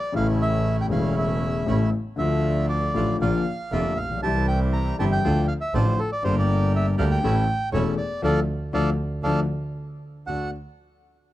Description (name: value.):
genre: tango.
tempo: 119 BPM.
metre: 4/4.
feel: rubato.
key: D minor.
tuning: A4 = 436 Hz.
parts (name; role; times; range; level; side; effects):
bandoneon; melody; 0.0-10.5 s; A4 to Bb5; -28 LUFS; right 1 dB; none.
warm concert grand piano; accompaniment; 0.1-10.5 s; E1 to A4; -25 LUFS; left 3 dB; none.
bandoneon; stabs; 0.1-10.5 s; A3 to Bb4; -34 LUFS; right 3 dB; none.
clear double bass; bass; 0.1-10.5 s; E1 to D2; -25 LUFS; right 1 dB; none.
room: small room ambience.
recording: dry, close 1970s-style studio recording.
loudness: -21 LUFS.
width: side -14 dB against mid.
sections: 0.0-10.3 A section; 10.3-11.3 B section.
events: band accent 8.2-10.3.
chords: 0.2 A; 2.2 Dm; 3.2 Bb; 4.2 C; 5.2 Dm; 6.2 Gm; 7.2 A; 8.2 Dm; 9.8 N.C.; 10.3 D.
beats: | 0.15 0.66 1.17 1.68 | 2.19 2.70 3.21 3.72 | 4.23 4.73 5.24 5.74 | 6.24 6.74 7.24 7.74 | 8.24 8.74 9.25 9.76 | 10.28.